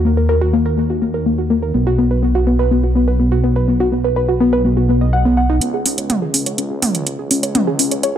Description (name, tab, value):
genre	melodic techno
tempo	124 BPM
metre	4/4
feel	straight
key	unclear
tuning	A4 = 440 Hz
part	warbly dusty pluck	arpeggios	0.0-8.2 s	A#3 to F#5	-16 LUFS	left 1 dB	chorus, tape echo
part	dark detuned saw bass	bass	0.0-8.2 s	B1 to D#2	-18 LUFS	right 1 dB	high-pass filter
part	house drum kit	drums	5.6-8.1 s	hi-hat, toms	-17 LUFS	right 3 dB	low-pass filter on hats, small room reverb, low-pass filter on toms
room	light reverb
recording	none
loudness	-14 LUFS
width	side -10 dB against mid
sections	0.0-5.6 A section; 5.6-8.2 B section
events	build-up 5.6-8.2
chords	0.0 D#m; 1.7 B5; 5.6 C#5